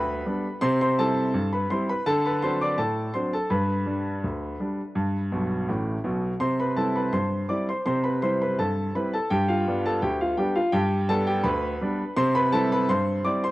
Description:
ragtime piano; 83 BPM; 2/4; straight; C major; A4 = 440 Hz
clear concert grand piano; solo; 0.0-13.5 s; A1 to D6; -22 LUFS; equal; cassette tape
light reverb, studio ambience; home recording on cassette; -22 LUFS; side -18 dB against mid
0.0-13.5 A section
grand piano fill 5.3-6.4
0.0 G; 0.6 C; 2.1 D7; 3.5 G; 6.4 C; 9.3 G7; 12.2 C

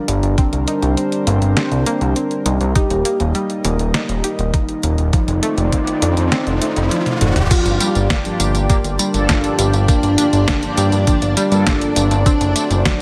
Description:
synthwave; 101 BPM; 4/4; straight; G minor; A4 = 440 Hz
soft octave-layered synth lead; melody; 0.0-12.7 s; D4 to G4; -24 LUFS; equal; chorus, digital delay
warm analog pad; sustained chords; 0.0-13.0 s; G3 to Eb5; -26 LUFS; equal; chorus, sidechain pumping
analog pluck; arpeggios; 0.1-13.0 s; F3 to G4; -28 LUFS; equal; chorus, digital delay
fat analog bass; bass; 0.1-12.8 s; D1 to G2; -20 LUFS; equal; sidechain pumping
detuned 8-bit digital drum machine; drums; 0.1-13.0 s; crash cymbal, hi-hat, snare drum, tambourine, toms; -24 LUFS; equal
electronic kick drum; drums; 0.4-13.0 s; -20 LUFS; equal
riser; sound effects; 4.7-7.5 s; -30 LUFS; equal
string machine, violins; second line; 7.5-12.7 s; D4 to F4; -30 LUFS; equal; ensemble chorus, vintage 12-bit sampler grit, digital delay
mellow synth brass; stabs; 7.8-12.6 s; G2 to A4; -27 LUFS; equal; chorus
light reverb; -17 LUFS; mono
0.0-7.5 A section; 7.5-13.0 B section
riser 4.7-7.5; kick drops out 6.9-7.5; drum fill 7.1-7.5
0.4 Cm7; 2.8 Eb; 5.1 F6; 7.5 Gm7; 12.3 D7/F#

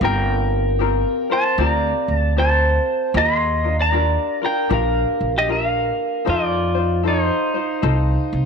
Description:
Hawaiian; 77 BPM; 4/4; swing 64% on 8ths; A4 = 439 Hz
pedal steel guitar; melody; 0.0-8.5 s; Eb4 to C6; -20 LUFS; left 1 dB
vibraphone with soft mallets; second line; 0.0-8.5 s; Eb4 to Eb5; -26 LUFS; right 11 dB
tenor ukulele; accompaniment; 0.0-8.5 s; C4 to C5; -25 LUFS; left 12 dB
upright bass; bass; 0.0-8.5 s; G1 to F2; -20 LUFS; right 1 dB
light reverb, studio reverb; 1960s-style stereo with parts hard left and right; -17 LUFS; side -5 dB against mid
0.0-8.5 A section
0.0 Gm11; 3.1 Ebmaj9; 6.3 F7

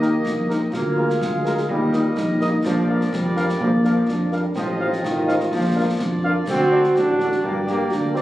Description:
military-style march for wind band; 125 BPM; 2/4; straight; A4 = 440 Hz
mellow cornet; melody; 0.0-8.2 s; Bb4 to F5; -30 LUFS; equal
bright woodwind section; second line; 0.0-8.2 s; F4 to F5; -31 LUFS; left 1 dB
warm euphonium; second line; 0.0-8.2 s; Bb3 to G4; -23 LUFS; right 1 dB
clear French horn section; accompaniment; 0.0-8.2 s; D4 to C5; -28 LUFS; left 2 dB
dark trombone section; sustained chords; 0.0-8.2 s; Eb3 to D4; -26 LUFS; right 1 dB
mellow tuba; bass; 0.0-8.2 s; A1 to G2; -23 LUFS; equal
concert snare drum, concert bass drum and clash cymbals; drums; 0.0-8.2 s; -30 LUFS; left 1 dB
wet recital hall reverb, RT60 1.5 s; recorded on a phone in the room, club reverb, compression; -18 LUFS; side -15 dB against mid
0.0-8.2 A section
0.0 Eb; 0.7 Bb7/D; 1.7 Eb; 2.6 Bb; 4.6 F7/A; 5.5 Bb; 6.5 D7; 7.4 Gm

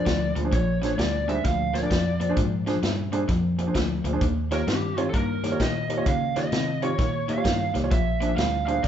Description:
electric blues shuffle; 130 BPM; 4/4; swing 65% on 8ths; Bb mixolydian; A4 = 441 Hz
lead guitar through a small cranked amp; melody; 0.0-8.9 s; G4 to F5; -28 LUFS; right 3 dB; overdrive
warm grand piano; accompaniment; 0.0-8.8 s; D4 to Db5; -30 LUFS; right 3 dB
overdriven semi-hollow guitar; riff; 0.0-8.9 s; Bb2 to C4; -28 LUFS; left 3 dB
vintage muted fingered electric bass; bass; 0.1-8.9 s; Bb1 to Db3; -28 LUFS; equal
natural country drum kit; drums; 0.1-8.9 s; hi-hat, kick drum, snare drum; -28 LUFS; equal
moderate large studio reverb, RT60 1.2 s; band playing live in one room, nothing above 7.7 kHz; -22 LUFS; side -9 dB against mid
0.0-8.9 A section
0.0 Bb7; 4.2 Eb7; 7.9 Bb7

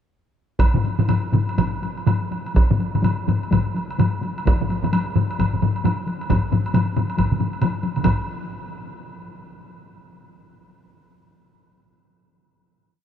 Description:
japanese traditional, taiko drum ensemble; 121-151 BPM; 4/4; swing 60% on 16ths
taiko ensemble; percussion; 0.6-8.2 s; -26 LUFS; left 2 dB
taiko ensemble; percussion; 0.6-8.2 s; -21 LUFS; right 1 dB
woodblock; percussion; 0.6-8.2 s; -31 LUFS; right 2 dB
taiko ensemble; percussion; 0.7-8.4 s; -23 LUFS; left 4 dB
taiko ensemble; percussion; 0.7-8.4 s; -26 LUFS; right 4 dB
moderate huge ambient reverb, RT60 6.6 s; dark, warm production; -19 LUFS; side -9 dB against mid
0.6-8.0 A section; 8.0-9.7 final hit
speeding up 0.6-9.7

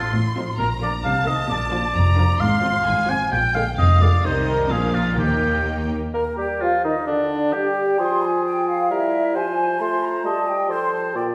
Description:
quick classical-period movement for symphony orchestra; 131 BPM; 2/4; rubato; A4 = 443 Hz
rich studio violin section; melody; 0.0-5.9 s; Eb5 to C6; -32 LUFS; equal
rich chamber violin section; second line; 0.0-5.9 s; Bb3 to A4; -38 LUFS; equal
warm oboe; second line; 0.0-11.3 s; D4 to Ab5; -26 LUFS; equal
rich chamber viola section; accompaniment; 0.0-5.9 s; D3 to C4; -30 LUFS; equal
bright symphonic cello section; bass; 0.0-5.9 s; Eb2 to C3; -26 LUFS; equal
rich chamber double bass section; bass; 0.0-5.9 s; F1 to Eb2; -27 LUFS; equal
timpani; percussion; 5.2-5.9 s; Eb3; -34 LUFS; equal
mellow bassoon; accompaniment; 6.1-11.3 s; Bb2 to Bb3; -28 LUFS; equal
large flute ensemble; second line; 6.2-11.2 s; D5 to C6; -26 LUFS; equal
mellow clarinet; second line; 6.2-11.3 s; D4 to Bb4; -28 LUFS; equal
wet recital hall reverb, RT60 1.8 s; recorded in a church or concert hall; -20 LUFS; mono
0.0-6.1 A section; 6.1-11.3 B section
0.0 F7/A; 0.6 Bb; 1.1 Adim/C; 1.5 Bb; 2.4 Fm/Ab; 3.3 Bb7; 4.2 Cm; 4.7 Bb7; 5.2 Eb; 6.1 N.C.; 8.0 Fm; 8.9 Edim/G; 9.4 Fm; 9.8 F/A; 10.2 Eb/G; 10.7 F

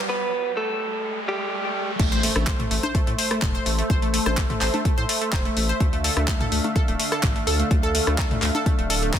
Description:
progressive house; 126 BPM; 4/4; straight; A minor; A4 = 440 Hz
filtered supersaw swell; sustained chords; 0.0-9.2 s; D3 to F5; -30 LUFS; right 1 dB; sidechain pumping
analog pluck; arpeggios; 0.0-9.2 s; A3 to C5; -26 LUFS; equal; chorus, sidechain pumping, ping-pong delay
riser, swell and impact; sound effects; 0.0-3.9 s; -31 LUFS; left 1 dB
direct-recorded clean electric guitar; melody; 0.1-1.9 s; G3 to B4; -26 LUFS; right 2 dB; vintage 12-bit sampler grit, ping-pong delay
round analog bass; bass; 2.0-9.2 s; D1 to A2; -26 LUFS; equal; sidechain pumping
deep house drum kit; drums; 2.0-9.2 s; crash cymbal, handclaps, hi-hat; -27 LUFS; left 1 dB; soft clipping on snare, high-pass filter on snare, sidechain pumping on hats, high-pass filter on hats, sidechain pumping on cymbals, high-pass filter on cymbals, high-pass filter on room
electronic kick drum; drums; 2.0-9.2 s; -23 LUFS; equal
punchy analog drum machine; percussion; 2.4-8.6 s; congas, rim click, toms; -29 LUFS; left 2 dB; sidechain pumping on snare, sidechain pumping on perc, sidechain pumping on toms
light reverb, digital ambience; dense, heavily limited modern master, high-pass filter; -20 LUFS; side -9 dB against mid
0.0-2.0 A section; 2.0-9.2 B section
build-up 0.0-2.0; riser 0.0-2.0; break 0.1-2.0; swell 1.0-2.0; drop 2.0-9.2; impact 2.0-3.9
0.0 Em (rootless); 2.0 Am; 5.8 Dmadd9

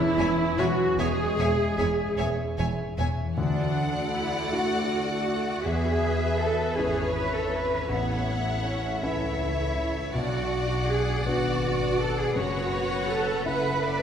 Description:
cinematic, emotional film score for orchestra; 50-55 BPM (dotted quarters); 6/8; rubato; A4 = 440 Hz
clear clarinet; second line; 0.0-2.2 s; E4 to G#4; -31 LUFS; equal
rich symphonic viola section; accompaniment; 0.0-14.0 s; C#3 to B4; -32 LUFS; right 2 dB
warm concert grand piano; accompaniment; 0.0-14.0 s; A1 to B4; -31 LUFS; left 2 dB
dark French horn section; sustained chords; 0.0-2.2 s; E3 to G#3; -33 LUFS; left 2 dB
concert harp; arpeggios; 0.0-14.0 s; E2 to C#5; -36 LUFS; left 1 dB
warm symphonic violin section; melody; 0.2-14.0 s; C#5 to G#5; -35 LUFS; left 3 dB
rich symphonic violin section; second line; 0.2-14.0 s; A4 to F#5; -33 LUFS; left 2 dB
clear symphonic double bass section; bass; 0.2-14.0 s; E1 to E2; -32 LUFS; right 2 dB
warm symphonic cello section; bass; 0.2-14.0 s; E2 to B4; -30 LUFS; right 3 dB
wet scoring stage reverb, RT60 2.0 s; heard from further back in the room; -24 LUFS; side -8 dB against mid
0.0-3.4 A section; 3.4-14.0 A section
0.0 C#m/E; 3.4 Dadd9; 5.7 E6; 7.9 Aadd9; 10.1 Bm; 12.3 F#m7

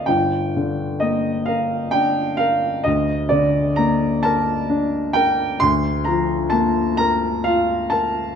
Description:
classical, romantic nocturne for solo piano; 44 BPM (dotted quarters); 12/8; rubato; G minor; A4 = 437 Hz
warm upright piano; solo; 0.0-8.4 s; G1 to C6; -17 LUFS; equal
moderate recital hall reverb, RT60 1.7 s; dark, warm production; -17 LUFS; side -7 dB against mid
0.0-8.4 A section
0.0 Gm; 5.6 Bb/D

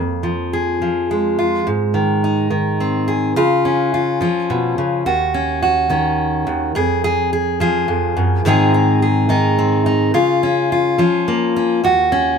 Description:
folk; 106 BPM; 3/4; straight; A4 = 440 Hz
fingerpicked steel-string acoustic guitar; solo; 0.0-12.4 s; Eb2 to Ab4; -14 LUFS; equal
moderate small room reverb, RT60 0.5 s; band playing live in one room; -14 LUFS; side -6 dB against mid
0.0-3.4 A section; 3.4-12.4 A section
0.0 Fm; 1.6 Ab; 3.4 Db; 5.1 Ebm7; 6.8 Fm; 8.4 Ab; 10.1 Db6; 11.8 Ebm7

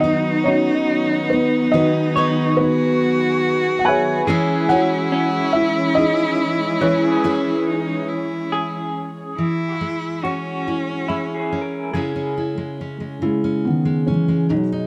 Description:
acoustic folk-pop ballad; 47 BPM (dotted quarters); 6/8; straight; C# minor; A4 = 441 Hz
felt-muted upright piano; melody; 0.0-8.5, 13.2-14.9 s; D#3 to G#5; -22 LUFS; equal
rich cello; second line; 0.0-11.9 s; C#4 to F#4; -25 LUFS; equal
fingerpicked steel-string acoustic guitar; accompaniment; 0.0-14.9 s; B2 to B4; -26 LUFS; equal
muted chamber string section; sustained chords; 0.0-9.3 s; D#3 to C#5; -31 LUFS; equal
electric guitar through a small old amp; arpeggios; 0.5-13.3 s; E3 to C#5; -29 LUFS; equal; tremolo
little or no reverb; close, detailed microphones; -19 LUFS; mono
0.0-9.4 A section; 9.4-11.9 B section; 11.9-14.9 C section
0.0 B/D#; 4.3 C#m/E; 11.9 C#m

